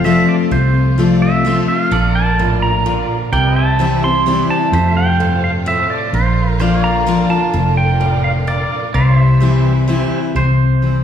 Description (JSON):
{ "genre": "honky-tonk and classic country", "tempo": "128 BPM", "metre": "3/4", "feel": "straight", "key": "C mixolydian", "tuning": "A4 = 440 Hz", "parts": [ { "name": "pedal steel guitar", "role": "melody", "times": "0.0-10.1 s", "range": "C5 to C6", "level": "-18 LUFS", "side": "right 2 dB", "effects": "none" }, { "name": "picked steel-string acoustic guitar", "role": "accompaniment", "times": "0.0-11.0 s", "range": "F2 to F4", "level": "-18 LUFS", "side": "left 4 dB", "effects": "none" }, { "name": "clear symphonic string section", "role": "sustained chords", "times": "0.0-10.3 s", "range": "C3 to Bb4", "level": "-26 LUFS", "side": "equal", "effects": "none" }, { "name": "pedal steel guitar", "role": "sustained chords", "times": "0.0-10.3 s", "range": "A4 to F5", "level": "-28 LUFS", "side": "right 3 dB", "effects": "none" }, { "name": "vintage muted fingered electric bass", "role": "bass", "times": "0.0-11.0 s", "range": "F1 to F2", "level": "-16 LUFS", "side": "equal", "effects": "none" }, { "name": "bright tonewheel organ", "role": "accompaniment", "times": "0.1-10.2 s", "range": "F4 to F5", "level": "-27 LUFS", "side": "right 5 dB", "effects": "slow rotary speaker, overdrive" }, { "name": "twangy electric guitar", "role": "second line", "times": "10.4-11.0 s", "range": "C5", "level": "-21 LUFS", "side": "right 2 dB", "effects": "spring reverb" } ], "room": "wet recital hall reverb, RT60 1.6 s", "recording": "recorded in a church or concert hall", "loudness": "-12 LUFS", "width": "side -9 dB against mid", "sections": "0.0-10.4 A section", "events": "none", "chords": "0.0 F; 1.9 Bb; 3.3 C; 4.7 F; 6.1 Bb; 8.9 C" }